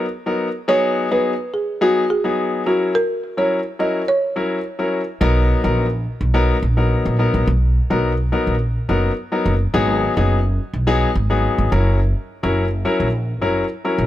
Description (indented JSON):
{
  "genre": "afrobeats",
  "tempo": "106 BPM",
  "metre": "4/4",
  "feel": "straight",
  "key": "B major",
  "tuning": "A4 = 439 Hz",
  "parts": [
    { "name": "clear grand piano", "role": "accompaniment", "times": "0.0-14.1 s", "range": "F#3 to A#4", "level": "-20 LUFS", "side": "left 2 dB", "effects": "none" },
    { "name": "folk marimba with medium mallets", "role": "melody", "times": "0.7-4.5 s", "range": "F#4 to D#5", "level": "-19 LUFS", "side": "right 1 dB", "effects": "none" },
    { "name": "upright bass", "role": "bass", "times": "5.2-14.1 s", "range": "F#1 to B1", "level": "-18 LUFS", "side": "equal", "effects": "none" }
  ],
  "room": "studio reverb",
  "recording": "dry, gritty hardware recording",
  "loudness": "-16 LUFS",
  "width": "side -13 dB against mid",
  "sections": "0.0-5.2 A section; 5.2-14.1 B section",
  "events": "none",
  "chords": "0.0 Bmaj7; 0.7 G#m7; 2.7 F#7; 5.2 Bmaj7; 9.7 G#m7; 11.7 F#7",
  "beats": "0.12 | 0.68 1.25 1.81 2.38 | 2.95 3.51 4.08 4.64 | 5.21 5.78 6.34 6.91 | 7.47 8.04 8.61 9.17 | 9.74 10.30 10.87 11.44 | 12.00 12.57 13.13 13.70"
}